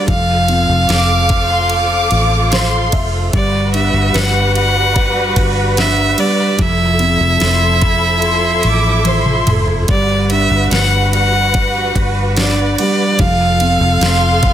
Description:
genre	pop ballad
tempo	73 BPM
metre	4/4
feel	straight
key	unclear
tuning	A4 = 440 Hz
part	clear violin	melody	0.0-14.5 s	D5 to F#5	-16 LUFS	equal	ping-pong delay
part	felt-muted upright piano	accompaniment	0.0-14.5 s	F3 to E5	-20 LUFS	right 1 dB	none
part	dark studio string section	sustained chords	0.0-14.5 s	F3 to B4	-20 LUFS	right 1 dB	none
part	vintage muted fingered electric bass	bass	0.1-14.5 s	F1 to A1	-17 LUFS	equal	none
part	smooth R&B drum kit	drums	0.1-14.5 s	kick drum, ride cymbal, snare drum, toms	-20 LUFS	equal	none
part	warm studio violin section	second line	0.9-14.5 s	B5 to D6	-20 LUFS	equal	none
room	light reverb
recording	dense, heavily limited modern master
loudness	-11 LUFS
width	side -10 dB against mid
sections	0.0-14.5 A section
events	drum fill 9.1-9.9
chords	0.1 Fmaj7; 3.3 Gmaj7; 6.6 Fmaj7; 9.9 Gmaj7; 13.2 F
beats	| 0.08 0.89 1.70 2.52 | 3.33 4.15 4.96 5.78 | 6.59 7.41 8.23 9.06 | 9.89 10.72 11.55 12.37 | 13.20 14.02

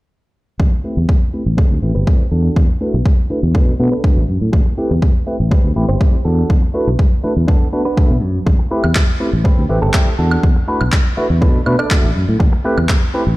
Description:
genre	filtered disco house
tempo	122 BPM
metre	4/4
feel	straight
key	A dorian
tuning	A4 = 442 Hz
part	direct-recorded clean electric guitar	riff	0.6-12.7 s	B3 to D5	-24 LUFS	right 2 dB	sidechain pumping, low-pass filter
part	fingered electric bass	bass	0.6-13.4 s	G1 to B2	-16 LUFS	equal	sidechain pumping, low-pass filter
part	electronic kick drum	drums	0.6-13.0 s	none	-13 LUFS	equal	overdrive
part	barky tine electric piano	accompaniment	0.8-13.2 s	A3 to E5	-21 LUFS	equal	phaser, sidechain pumping, low-pass filter
part	electronic woodblock and handclaps	drums	8.8-13.0 s	none	-22 LUFS	equal	overdrive, sidechain pumping on perc
room	digital ambience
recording	played on a big sound system in a bare room, large studio reverb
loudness	-12 LUFS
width	side -19 dB against mid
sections	0.6-13.4 A section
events	filter sweep 0.6-13.4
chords	0.6 Am7; 2.3 E9sus4; 3.5 Bm7; 4.5 Am7; 6.3 E9sus4; 7.5 Bm7; 8.5 Am7; 10.2 E9sus4; 11.4 Bm7; 12.4 Am7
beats	| 0.60 1.09 1.58 2.07 | 2.56 3.06 3.55 4.04 | 4.53 5.02 5.52 6.01 | 6.50 6.99 7.48 7.97 | 8.47 8.96 9.45 9.94 | 10.43 10.93 11.42 11.91 | 12.40 12.89

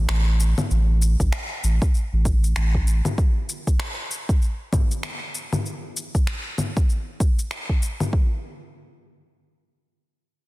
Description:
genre	organic downtempo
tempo	97 BPM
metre	4/4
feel	swing 59% on 16ths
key	unclear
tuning	A4 = 440 Hz
part	warm sub bass	bass	0.0-3.0 s	A1	-19 LUFS	equal	tube saturation
part	electronic finger snaps, shaker and congas	drums	0.1-8.1 s	none	-28 LUFS	left 1 dB	overdrive, soft clipping on snare
part	electronic kick drum	drums	1.2-8.3 s	none	-20 LUFS	equal	overdrive
room	digital ambience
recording	dense, heavily limited modern master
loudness	-20 LUFS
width	side -20 dB against mid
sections	0.0-8.1 A section; 8.1-10.5 B section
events	none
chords	none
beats	0.09 | 0.71 1.32 1.94 2.56 | 3.18 3.80 4.42 5.04 | 5.66 6.27 6.89 7.51 | 8.13

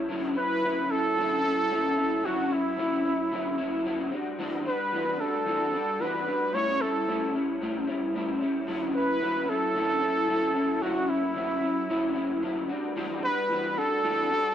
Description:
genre	indie pop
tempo	112 BPM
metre	4/4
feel	swing 55% on 16ths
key	D major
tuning	A4 = 440 Hz
part	electric guitar through a small old amp	accompaniment	0.0-14.5 s	A2 to F#4	-28 LUFS	left 1 dB	analog chorus, warbly pitch drift
part	breathy trumpet	melody	0.4-14.5 s	E4 to C#5	-27 LUFS	right 1 dB	analog chorus, slapback echo
room	light reverb, studio ambience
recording	dry, close 1970s-style studio recording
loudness	-25 LUFS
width	side -10 dB against mid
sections	0.1-14.5 A section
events	none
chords	0.1 Dmaj9; 4.1 Em9; 6.5 A7; 8.7 Dmaj9; 12.7 Em9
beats	| 0.10 0.64 1.17 1.71 | 2.25 2.78 3.32 3.85 | 4.39 4.92 5.46 6.00 | 6.53 7.07 7.61 8.14 | 8.68 9.21 9.75 10.28 | 10.82 11.36 11.89 12.43 | 12.96 13.50 14.04

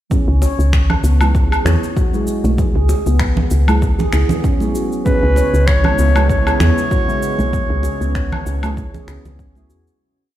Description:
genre	organic downtempo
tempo	97 BPM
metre	4/4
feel	swing 55% on 16ths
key	C# minor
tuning	A4 = 441 Hz
part	deep mellow chord stab	accompaniment	0.1-10.0 s	F#3 to G#4	-26 LUFS	right 1 dB	chorus, sidechain pumping, ping-pong delay
part	handpan	arpeggios	0.1-9.9 s	G#3 to C#5	-24 LUFS	equal	ping-pong delay
part	electronic cabasa, finger snaps and woodblock	drums	0.1-10.0 s	none	-24 LUFS	equal	none
part	electronic kick drum	drums	0.1-9.5 s	none	-19 LUFS	equal	none
part	woody FM bass	bass	0.3-9.9 s	B1 to E2	-15 LUFS	equal	sidechain pumping
part	bongos and congas	percussion	0.4-9.7 s	none	-23 LUFS	right 2 dB	none
part	mellow clarinet	melody	5.1-9.3 s	B4 to C#5	-20 LUFS	right 1 dB	tape echo
part	airy breathy pad	sustained chords	5.1-10.0 s	C#3 to E4	-25 LUFS	left 1 dB	chorus, sidechain pumping
room	light reverb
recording	played on a big sound system in a bare room, stone room reverb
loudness	-13 LUFS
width	side -13 dB against mid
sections	0.1-10.0 groove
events	fade-out 6.7-10.0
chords	0.1 C#m7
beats	| 0.11 0.73 1.35 1.97 | 2.59 3.21 3.82 4.44 | 5.06 5.68 6.30 6.92 | 7.54 8.15 8.77 9.39

